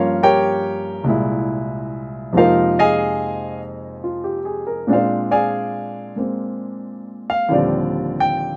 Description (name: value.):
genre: solo jazz.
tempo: 94 BPM.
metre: 4/4.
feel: swing 67% on 8ths, rubato.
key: unclear.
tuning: A4 = 441 Hz.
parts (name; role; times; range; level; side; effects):
warm grand piano; solo; 0.0-8.6 s; C2 to Ab5; -20 LUFS; equal; none.
room: little or no reverb.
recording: recorded outdoors, with no room sound.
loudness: -20 LUFS.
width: mono.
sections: 0.0-8.6 A section.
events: grand piano solo 0.0-8.6.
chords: 0.0 Gm7b5; 1.1 C7b13; 2.3 Fm7; 4.9 Bb9; 7.5 Ebmaj13.